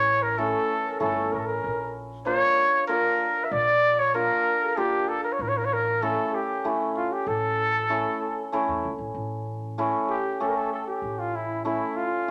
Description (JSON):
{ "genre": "klezmer", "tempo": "96 BPM", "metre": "3/4", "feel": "straight", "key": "A phrygian dominant", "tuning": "A4 = 441 Hz", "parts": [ { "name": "mellow cornet", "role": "melody", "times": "0.0-12.3 s", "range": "E4 to E5", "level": "-26 LUFS", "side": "equal", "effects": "none" }, { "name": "growling clarinet", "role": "second line", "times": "0.0-12.3 s", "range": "E4 to D5", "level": "-38 LUFS", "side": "equal", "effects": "none" }, { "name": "hammered dulcimer", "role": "accompaniment", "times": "0.0-12.3 s", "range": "E3 to G4", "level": "-31 LUFS", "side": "equal", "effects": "none" }, { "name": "upright bass", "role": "bass", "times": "0.0-11.8 s", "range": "G1 to E2", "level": "-38 LUFS", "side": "equal", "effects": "none" } ], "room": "wet studio reverb, RT60 0.8 s", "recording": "none", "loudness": "-25 LUFS", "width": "mono", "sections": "0.0-9.2 A section; 9.2-12.3 B section", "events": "cornet solo 9.2-12.3", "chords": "0.0 A; 1.6 Bb; 5.4 A" }